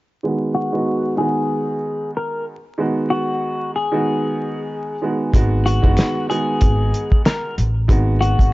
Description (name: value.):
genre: hip hop, boom-bap hip-hop.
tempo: 94 BPM.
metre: 4/4.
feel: swing 56% on 16ths.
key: G# minor.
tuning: A4 = 440 Hz.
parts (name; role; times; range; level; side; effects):
dark upright piano; accompaniment; 0.2-8.5 s; D#3 to F#4; -22 LUFS; right 2 dB; high-pass filter, low-pass filter.
clean electric guitar; melody; 0.5-8.5 s; F#4 to A#4; -22 LUFS; left 2 dB; lush chorus, high-pass filter, low-pass filter.
upright bass; bass; 5.3-8.5 s; F#1 to A1; -18 LUFS; equal; none.
cloth-damped thuddy drum kit; drums; 5.3-8.5 s; hi-hat, kick drum, snare drum; -16 LUFS; equal; vintage 12-bit sampler grit.
finger snap; percussion; 6.0-7.4 s; none; -36 LUFS; left 8 dB; none.
room: light reverb.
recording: vinyl crackle, nothing above 7.6 kHz.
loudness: -17 LUFS.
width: side -19 dB against mid.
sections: 0.2-5.3 A section; 5.3-8.5 B section.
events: filter sweep 0.2-5.3.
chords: 0.2 G#m7.